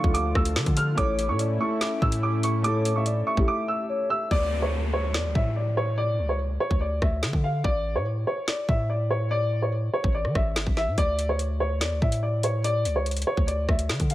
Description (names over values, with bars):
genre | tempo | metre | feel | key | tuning
hip hop, drill | 144 BPM | 4/4 | half-time | D harmonic minor | A4 = 440 Hz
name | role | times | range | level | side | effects
dark upright piano | melody | 0.0-14.1 s | C#5 to F6 | -28 LUFS | equal | low-pass filter
hollow clarinet-like synth lead | second line | 0.0-4.3 s | C#5 to F5 | -32 LUFS | left 3 dB | chorus, digital delay
dark concert grand piano | accompaniment | 0.0-4.3 s | D3 to E5 | -30 LUFS | equal | low-pass filter
warm analog pad | sustained chords | 0.0-4.3 s | F3 to A4 | -34 LUFS | left 2 dB | chorus
long sustained 808-style bass | bass | 0.0-14.1 s | G1 to E3 | -26 LUFS | equal | none
drill drum kit | drums | 0.0-14.1 s | hi-hat, kick drum, rim click, snare drum | -26 LUFS | equal | none
downlifter | sound effects | 4.3-7.6 s | none | -37 LUFS | equal | none
room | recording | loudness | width
light reverb, digital ambience | none | -23 LUFS | side -15 dB against mid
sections
0.0-4.3 A section; 4.3-14.1 B section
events
break 3.5-4.3; hi-hats muted 4.3-11.0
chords
0.0 Dm; 1.0 A; 4.3 D5; 7.6 A5; 11.0 D5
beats
0.14 0.56 | 0.98 1.39 1.81 2.23 | 2.64 3.06 3.48 3.89 | 4.31 4.73 5.14 5.56 | 5.98 6.39 6.81 7.23 | 7.64 8.06 8.48 8.89 | 9.31 9.73 10.14 10.56 | 10.98 11.39 11.81 12.23 | 12.64 13.06 13.48 13.89